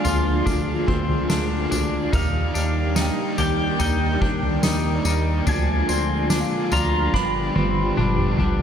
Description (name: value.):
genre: dream pop.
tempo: 72 BPM.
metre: 4/4.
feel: straight.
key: unclear.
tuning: A4 = 442 Hz.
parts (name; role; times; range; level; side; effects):
pedal steel guitar; melody; 0.0-8.4 s; F5 to B5; -29 LUFS; equal; wide subtle chorus, tape echo.
overdriven semi-hollow guitar; accompaniment; 0.0-8.6 s; G2 to Ab4; -30 LUFS; right 2 dB; tremolo, wide subtle chorus.
ensemble organ-string; sustained chords; 0.0-8.6 s; D3 to D5; -25 LUFS; equal; ensemble chorus.
clean electric guitar; arpeggios; 0.0-8.6 s; C4 to G4; -28 LUFS; left 4 dB; analog chorus, tape echo.
soft-mallet drum kit; drums; 0.0-8.6 s; kick drum, snare drum, tambourine, toms; -25 LUFS; equal; none.
small celesta; texture; 0.0-8.5 s; F5 to Ab5; -39 LUFS; right 1 dB; none.
chorused synth bass; bass; 0.1-8.6 s; G1 to Eb2; -24 LUFS; equal; none.
room: moderate lush hall reverb, RT60 2.4 s.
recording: dreamy mix soaked in reverb.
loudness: -19 LUFS.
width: side -8 dB against mid.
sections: 0.0-8.6 A section.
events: drum fill 7.1-8.6.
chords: 0.0 Bb7/D; 2.1 Ebmaj7; 5.5 Bb7/D; 7.1 G7.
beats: 0.47 1.31 | 2.14 2.97 3.81 4.64 | 5.47 6.31 7.14 7.97.